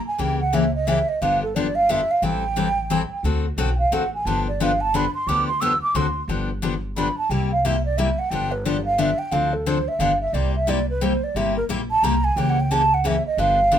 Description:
acoustic string swing (jazz manouche); 178 BPM; 3/4; swing 61% on 8ths; G mixolydian; A4 = 440 Hz
mellow hollow concert flute; melody; 0.0-13.8 s; A4 to E6; -21 LUFS; right 2 dB
picked steel-string acoustic guitar; accompaniment; 0.2-13.8 s; C3 to A4; -24 LUFS; left 5 dB
upright bass; bass; 0.2-13.8 s; G1 to D2; -26 LUFS; equal
moderate studio reverb, RT60 0.6 s; minimal, uncompressed stereo recording; -19 LUFS; side -9 dB against mid
0.0-6.3 A section; 6.3-13.8 A section
flute solo 0.0-6.3, 6.3-13.8
0.2 C#dim7; 1.2 G7; 2.2 Am7; 3.2 D7; 4.2 G7; 5.9 D7; 6.3 G7; 7.3 C7; 8.3 G7; 9.3 Dm7; 10.0 G7; 10.3 C7; 12.4 C#dim7
| 0.19 0.53 0.87 | 1.21 1.54 1.88 | 2.22 2.56 2.90 | 3.24 3.57 3.91 | 4.25 4.59 4.93 | 5.26 5.60 5.94 | 6.28 6.62 6.95 | 7.29 7.63 7.97 | 8.31 8.64 8.98 | 9.32 9.66 9.99 | 10.33 10.67 11.01 | 11.35 11.68 12.02 | 12.36 12.70 13.03 | 13.37 13.71

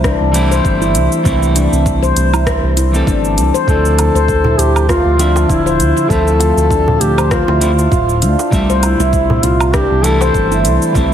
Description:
organic downtempo; 99 BPM; 4/4; swing 56% on 16ths; D minor; A4 = 442 Hz
clean electric guitar; accompaniment; 0.0-11.1 s; C3 to E5; -19 LUFS; right 1 dB; vintage 12-bit sampler grit, sidechain pumping, ping-pong delay, shimmer reverb
handpan; arpeggios; 0.0-11.1 s; D4 to C5; -17 LUFS; left 1 dB; ping-pong delay, shimmer reverb
smooth synth bass; bass; 0.0-11.1 s; D1 to D2; -15 LUFS; equal; sidechain pumping
electronic kick drum; drums; 0.0-11.1 s; -18 LUFS; equal; overdrive
organic electronic drum kit; drums; 0.0-11.1 s; cabasa, hi-hat, rim click, woodblock; -22 LUFS; right 1 dB; overdrive
dark duduk; melody; 3.7-10.6 s; E4 to A4; -16 LUFS; left 1 dB; ping-pong delay, shimmer reverb
darbuka; percussion; 4.0-10.3 s; -22 LUFS; right 2 dB
moderate lush hall reverb, RT60 2.1 s; heavily compressed radio sound, multiband compression; -10 LUFS; side -9 dB against mid
0.0-11.1 A section
0.0 Am7; 3.7 Dm7; 8.5 Am7
0.04 0.65 | 1.25 1.86 2.47 3.07 | 3.68 4.29 4.89 5.50 | 6.10 6.71 7.32 7.92 | 8.53 9.13 9.74 10.35 | 10.95

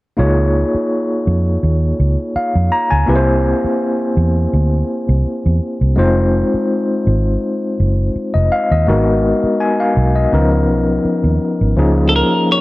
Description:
lush 1970s-style soul; 83 BPM; 4/4; swing 54% on 16ths; Db major; A4 = 444 Hz
overdriven tine electric piano; accompaniment; 0.2-12.6 s; Eb3 to Bb5; -16 LUFS; left 1 dB; medium tremolo
vintage muted fingered electric bass; bass; 0.2-12.2 s; F1 to F2; -14 LUFS; equal
clean electric guitar; melody; 12.1-12.6 s; A4 to Db5; -14 LUFS; equal; spring reverb
light reverb; -13 LUFS; side -19 dB against mid
0.2-11.8 A section
0.2 Db69; 3.1 C7; 6.0 Fm7; 8.9 Abm9; 10.3 Db13; 11.8 Db69
| 0.19 0.91 1.64 2.36 | 3.08 3.81 4.53 5.26 | 5.98 6.70 7.43 8.15 | 8.88 9.60 10.32 11.05 | 11.77 12.50

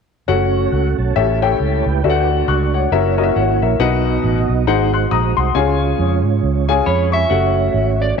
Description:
uptempo gospel; 137 BPM; 4/4; swing 59% on 8ths; F# minor; A4 = 440 Hz
warm upright piano; accompaniment; 0.3-8.2 s; G#2 to F#6; -18 LUFS; left 11 dB
mellow tonewheel organ; sustained chords; 0.3-8.2 s; G#3 to C#6; -21 LUFS; right 13 dB; slow rotary speaker, chorus vibrato
vintage muted fingered electric bass; bass; 0.3-8.1 s; F#1 to G#2; -18 LUFS; right 2 dB
electric slide guitar; melody; 6.9-8.2 s; C#5 to E5; -19 LUFS; right 3 dB
moderate plate reverb, RT60 2.7 s; 1960s-style stereo with parts hard left and right; -14 LUFS; side -6 dB against mid
0.3-7.3 A section
0.3 F#m; 1.2 A7; 2.0 D; 2.9 F#7; 3.8 B; 4.7 G#7; 5.6 C#; 7.3 F#m
| 0.28 0.72 1.16 1.60 | 2.04 2.48 2.92 3.36 | 3.80 4.24 4.67 5.11 | 5.55 5.99 6.43 6.87 | 7.31 7.75 8.18

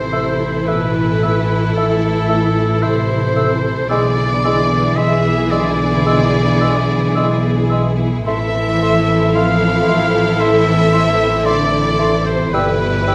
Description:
classical, slow romantic movement for symphony orchestra; 56 BPM; 4/4; rubato; A minor; A4 = 439 Hz
warm symphonic violin section; melody; 0.0-13.1 s; A4 to F5; -28 LUFS; equal
warm oboe; second line; 0.0-13.1 s; A4 to F5; -23 LUFS; equal
warm symphonic violin section; second line; 0.0-13.1 s; E4 to B4; -25 LUFS; equal
warm symphonic viola section; accompaniment; 0.0-13.1 s; E3 to E4; -26 LUFS; equal
mellow French horn section; sustained chords; 0.0-13.1 s; E3 to A4; -23 LUFS; equal
warm symphonic cello section; bass; 0.0-13.1 s; A2 to F3; -24 LUFS; equal
warm symphonic double bass section; bass; 0.0-13.1 s; G1 to B1; -23 LUFS; equal
concert flute; second line; 0.1-13.1 s; C6 to E6; -29 LUFS; equal
warm bassoon; accompaniment; 0.1-13.1 s; G3 to A3; -26 LUFS; equal
moderate scoring stage reverb, RT60 1.5 s; -15 LUFS; mono
0.0-13.1 A section
0.0 Am; 3.9 E7/B; 8.3 Am; 12.5 Em/G
0.68 1.77 2.83 | 3.90 4.98 6.06 7.16 | 8.27 9.36 10.41 11.46 | 12.54

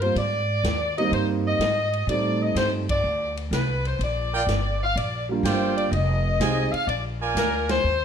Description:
jazz, big band swing; 125 BPM; 4/4; swing 68% on 8ths; A4 = 440 Hz
edgy saxophone section; melody; 0.0-8.0 s; Bb4 to F5; -25 LUFS; left 2 dB
warm concert grand piano; accompaniment; 0.0-6.7 s; G3 to G4; -27 LUFS; right 5 dB
upright bass; bass; 0.0-8.0 s; F1 to A2; -26 LUFS; equal
swinging big-band drum kit; drums; 0.0-7.8 s; hi-hat, kick drum, ride cymbal, snare drum; -32 LUFS; equal
bright trumpet section; stabs; 4.3-7.8 s; F4 to Ab5; -28 LUFS; right 4 dB
light reverb; dark, warm production; -21 LUFS; side -8 dB against mid
0.0-8.0 A section
band accent 2.8, 7.6
0.2 Abmaj7; 2.1 Am7b5; 3.0 Csus2; 4.0 Gm7; 5.9 Fm7; 6.9 Bb7
| 0.16 0.64 1.12 1.60 | 2.08 2.56 3.04 3.52 | 4.00 4.48 4.96 5.44 | 5.92 6.40 6.88 7.36 | 7.84

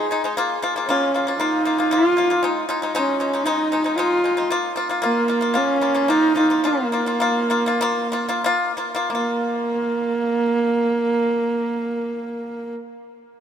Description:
mongolian traditional, Mongolian folk; 87-116 BPM; 4/4; straight; Bb yu mode; A4 = 443 Hz
rich horsehead fiddle; melody; 0.0-12.7 s; Bb3 to Ab4; -20 LUFS; right 1 dB
pipa; arpeggios; 0.0-12.8 s; Ab3 to F4; -22 LUFS; left 2 dB
moderate huge ambient reverb, RT60 6.5 s; minimal, uncompressed stereo recording; -18 LUFS; side -8 dB against mid
0.0-9.1 A section; 9.1-13.4 B section
slowing down 4.5-9.1
0.4 Bb5; 2.4 Ab5; 4.5 Bb5
| 0.37 0.88 1.40 1.92 | 2.44 2.95 3.47 3.99 | 4.51 5.03 5.55 6.09 | 6.64 7.22 7.82 8.45 | 9.12 9.80 10.49 11.18 | 11.87 12.56

